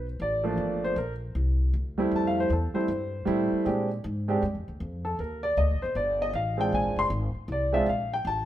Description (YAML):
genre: jazz piano trio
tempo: 156 BPM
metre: 4/4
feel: swing 64% on 8ths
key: unclear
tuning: A4 = 437 Hz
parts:
  - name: warm concert grand piano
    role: melody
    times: 0.0-8.5 s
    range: F3 to C6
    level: -26 LUFS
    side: right 1 dB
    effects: none
  - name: upright bass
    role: bass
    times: 0.0-8.5 s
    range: F1 to Bb2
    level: -30 LUFS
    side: left 1 dB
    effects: none
room: moderate stone room reverb, RT60 1.3 s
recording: band playing live in one room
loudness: -25 LUFS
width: side -12 dB against mid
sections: 0.0-8.5 A section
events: grand piano solo 0.0-8.5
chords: 0.0 Asus4; 0.6 Gm7; 1.3 Csus2; 2.1 Fmaj7; 3.7 Bb13; 5.2 Ebmaj7; 6.7 Bb9